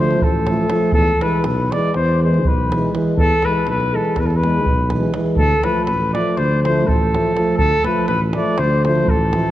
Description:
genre	balkan folk, Balkan brass band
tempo	244 BPM (eighths)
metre	9/8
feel	straight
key	D dorian sharp4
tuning	A4 = 438 Hz
part	mellow trumpet	melody	0.0-9.5 s	A4 to D5	-19 LUFS	left 1 dB	none
part	dark euphonium	accompaniment	0.0-9.5 s	E3 to F3	-23 LUFS	right 2 dB	none
part	mellow trombone	accompaniment	0.0-9.5 s	G#3 to A3	-26 LUFS	left 3 dB	none
part	mellow tuba	bass	0.0-9.5 s	A1 to E2	-20 LUFS	equal	none
part	davul	percussion	0.1-9.4 s	none	-23 LUFS	right 1 dB	none
room	wet concert hall reverb, RT60 2.1 s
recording	worn, warbling old tape, cassette tape, warbly pitch drift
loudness	-15 LUFS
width	side -14 dB against mid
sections	0.0-9.5 A section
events	none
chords	0.0 Dm; 0.9 E; 5.4 Dm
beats	0.19 0.44 0.69 | 0.94 1.18 1.43 1.68 1.93 2.17 2.42 2.67 2.92 | 3.16 3.41 3.65 3.90 4.15 4.39 4.64 4.89 5.13 | 5.38 5.63 5.87 6.12 6.36 6.61 6.85 7.10 7.34 | 7.59 7.83 8.08 8.32 8.57 8.81 9.06 9.30

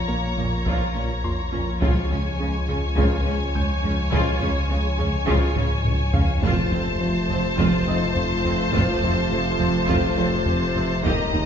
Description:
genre	cinematic, hybrid orchestral and electronic film score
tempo	104 BPM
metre	4/4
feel	straight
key	unclear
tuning	A4 = 441 Hz
part	rich symphonic violin section	melody	0.0-11.5 s	Ab5 to Bb5	-31 LUFS	left 3 dB	none
part	clear symphonic violin section	second line	0.0-11.5 s	C5 to Eb5	-30 LUFS	left 2 dB	none
part	hollow soft pad	sustained chords	0.0-11.5 s	F3 to Eb5	-32 LUFS	left 1 dB	none
part	pure sine sub bass	bass	0.0-11.5 s	Eb1 to Db2	-28 LUFS	equal	none
part	clear concert grand piano	texture	0.0-11.5 s	Eb4 to G6	-37 LUFS	left 2 dB	none
part	clear symphonic viola section	accompaniment	0.1-11.4 s	Ab3 to G4	-32 LUFS	right 1 dB	none
part	smooth synth bass	riff	0.1-11.5 s	Db2 to Bb3	-29 LUFS	right 2 dB	none
part	rich symphonic double bass section	bass	0.1-11.4 s	F1 to Eb2	-29 LUFS	right 2 dB	none
part	warm symphonic cello section	bass	0.1-11.4 s	Eb2 to Db3	-30 LUFS	right 2 dB	none
part	taiko ensemble	drums	0.4-11.5 s	none	-27 LUFS	equal	none
part	bright trombone section	sustained chords	0.7-11.5 s	Bb2 to G3	-33 LUFS	right 2 dB	none
part	mellow French horn section	sustained chords	0.7-11.5 s	Ab3 to F4	-30 LUFS	left 4 dB	none
room	wet recital hall reverb, RT60 1.9 s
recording	recorded in a church or concert hall, nothing above 7.5 kHz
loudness	-20 LUFS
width	side -8 dB against mid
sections	0.0-11.5 A section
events	drum fill 5.6-6.4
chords	0.0 Bbm; 1.8 Db; 6.4 F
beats	0.09 0.66 1.24 | 1.81 2.39 2.97 3.55 | 4.12 4.70 5.28 5.85 | 6.43 7.01 7.58 8.16 | 8.74 9.31 9.89 10.47 | 11.05

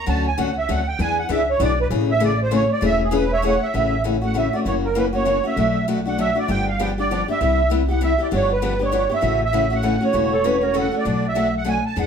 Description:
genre	acoustic string swing (jazz manouche)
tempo	197 BPM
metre	3/4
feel	swing 59% on 8ths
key	A major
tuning	A4 = 440 Hz
part	musette accordion	melody	0.0-12.1 s	G#4 to A5	-21 LUFS	right 3 dB	none
part	picked steel-string acoustic guitar	accompaniment	0.1-12.1 s	B2 to G#4	-22 LUFS	left 4 dB	none
part	upright bass	bass	0.1-12.1 s	E1 to E2	-24 LUFS	equal	none
part	warm clarinet	second line	10.3-11.1 s	A4 to B4	-24 LUFS	right 2 dB	none
room	wet studio reverb, RT60 0.8 s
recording	heard from further back in the room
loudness	-18 LUFS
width	side -7 dB against mid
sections	0.0-3.7 A section; 3.7-11.1 B section; 11.1-12.1 C section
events	accordion solo 0.0-3.7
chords	0.1 Dmaj7; 1.0 E7; 1.9 Amaj7; 3.7 A6; 4.7 F#7; 5.6 Bm7; 6.5 G7; 7.4 Cmaj7; 8.3 G7; 9.2 A6; 11.1 Bm7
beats	| 0.08 0.39 0.69 | 1.00 1.30 1.61 | 1.91 2.22 2.52 | 2.83 3.13 3.44 | 3.74 4.05 4.35 | 4.66 4.96 5.27 | 5.57 5.88 6.18 | 6.49 6.79 7.10 | 7.40 7.71 8.01 | 8.32 8.62 8.93 | 9.23 9.54 9.84 | 10.14 10.45 10.75 | 11.06 11.36 11.67 | 11.97

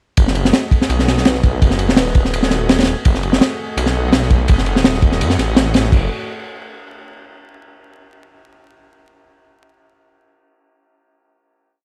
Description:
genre	drum and bass, jungle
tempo	167 BPM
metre	4/4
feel	straight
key	F# dorian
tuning	A4 = 442 Hz
part	lush unison pad	sustained chords	0.2-6.1 s	A3 to G#5	-29 LUFS	equal	chorus
part	detuned saw bass	bass	0.2-6.1 s	D#1 to F#2	-21 LUFS	equal	none
part	crunchy breakbeat drum kit	drums	0.2-6.0 s	crash cymbal, kick drum, ride cymbal, snare drum	-17 LUFS	equal	none
part	kalimba	melody	1.3-2.9 s	A4 to B4	-31 LUFS	equal	dub echo
room	small room ambience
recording	dry, gritty hardware recording, vinyl crackle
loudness	-15 LUFS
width	mono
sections	0.2-5.9 drop; 5.9-7.4 final chord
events	drop 0.2-5.9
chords	0.2 F#m69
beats	| 0.18 0.54 0.90 1.25 | 1.61 1.97 2.33 2.69 | 3.05 3.41 3.77 4.13 | 4.49 4.85 5.21 5.57 | 5.92

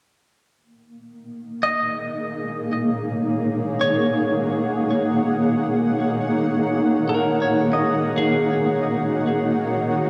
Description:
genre	ambient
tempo	55 BPM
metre	3/4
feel	straight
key	Eb minor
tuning	A4 = 440 Hz
part	granular cloud pad	sustained chords	1.3-10.1 s	Bb3 to Gb5	-23 LUFS	equal	built-in reverb
part	bowed-like drone	drone	1.7-10.1 s	Eb3	-35 LUFS	equal	built-in reverb
part	clean electric guitar	arpeggios	1.6-10.1 s	Ab4 to Eb5	-27 LUFS	equal	harmonic tremolo, delay
room	wet cathedral reverb, RT60 6.8 s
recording	in a vast, echoing space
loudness	-21 LUFS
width	mono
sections	0.5-10.1 A section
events	fade-in on synth drone 0.5-10.1; filter sweep on ambient pad 0.5-10.1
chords	0.5 Ebm7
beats	| 0.55 1.64 2.73 | 3.82 4.91 6.00 | 7.09 8.18 9.27

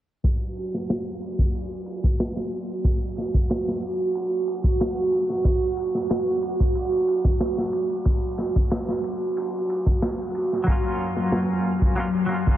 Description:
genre	trip hop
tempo	92 BPM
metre	4/4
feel	straight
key	unclear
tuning	A4 = 440 Hz
part	dark analog pad	sustained chords	0.2-12.6 s	F#3 to F#4	-25 LUFS	right 2 dB	chorus, vintage 12-bit sampler grit
part	crunchy breakbeat drum kit	drums	0.2-12.6 s	kick drum, ride cymbal, snare drum	-24 LUFS	equal	low-pass filter on kick, low-pass filter on cymbals, low-pass filter on snare, low-pass filter on room
part	clean electric guitar	accompaniment	10.6-12.6 s	F#3 to E#4	-27 LUFS	equal	tremolo, tape echo
room	moderate huge ambient reverb, RT60 4.0 s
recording	dreamy mix soaked in reverb, low-pass filter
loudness	-22 LUFS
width	side -13 dB against mid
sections	0.2-12.6 A section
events	filter sweep 0.2-12.6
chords	0.2 N.C.; 10.7 F#maj7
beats	| 0.24 0.89 1.54 2.19 | 2.85 3.50 4.15 4.80 | 5.45 6.11 6.76 7.41 | 8.06 8.71 9.37 10.02 | 10.67 11.32 11.97

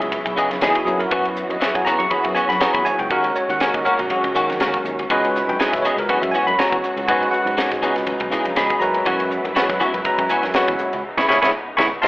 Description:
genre	electric jazz fusion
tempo	121 BPM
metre	4/4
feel	swing 55% on 16ths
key	C# dorian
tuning	A4 = 440 Hz
part	bell-like tine electric piano	accompaniment	0.0-12.1 s	F#3 to C#6	-20 LUFS	equal	medium stereo tremolo
part	muted studio string section	sustained chords	0.0-12.1 s	C#3 to F#4	-26 LUFS	equal	none
part	clean electric guitar	stabs	0.0-12.1 s	E3 to G#4	-22 LUFS	left 1 dB	ensemble chorus
part	sustaining fretless electric bass	bass	0.0-12.1 s	A#1 to F#3	-30 LUFS	equal	none
part	crisp fusion drum kit	drums	0.0-12.1 s	hi-hat, kick drum, ride cymbal, snare drum	-26 LUFS	equal	none
part	congas	percussion	0.1-12.1 s	none	-35 LUFS	equal	none
room	moderate large studio reverb, RT60 1.1 s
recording	telephone sound, faint mains hum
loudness	-17 LUFS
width	side -20 dB against mid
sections	0.0-12.1 A section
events	band accent 11.0-12.1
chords	0.0 C#m9; 0.9 F#7sus4; 3.1 D#m7; 5.1 C#m9; 6.1 F#7sus4; 7.1 G#m7; 7.8 C#m9; 8.8 F#7sus4; 11.0 C#m9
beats	0.12 0.62 | 1.11 1.61 2.11 2.61 | 3.11 3.60 4.10 4.60 | 5.10 5.59 6.09 6.59 | 7.08 7.58 8.08 8.57 | 9.07 9.56 10.06 10.55 | 11.05 11.54 12.03

